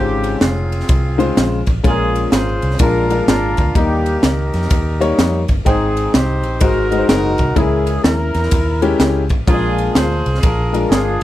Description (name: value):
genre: uptempo gospel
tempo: 126 BPM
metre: 4/4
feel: swing 64% on 8ths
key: unclear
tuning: A4 = 441 Hz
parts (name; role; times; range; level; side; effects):
- mellow horn section; melody; 0.0-11.2 s; Bb3 to C5; -20 LUFS; right 1 dB; none
- clear upright piano; accompaniment; 0.0-11.1 s; Ab2 to G5; -19 LUFS; left 4 dB; none
- vintage muted fingered electric bass; bass; 0.0-11.2 s; F1 to F2; -19 LUFS; equal; none
- crisp fusion drum kit; drums; 0.2-11.1 s; kick drum, ride cymbal, snare drum; -17 LUFS; equal; none
room: studio reverb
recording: none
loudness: -13 LUFS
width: side -14 dB against mid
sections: 0.0-11.2 A section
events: none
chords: 0.0 Dbmaj7; 1.8 Bbm7; 2.8 Bb7; 3.8 Eb; 5.7 Abmaj7; 6.6 Ab7; 7.6 Dbm6; 9.5 Bb7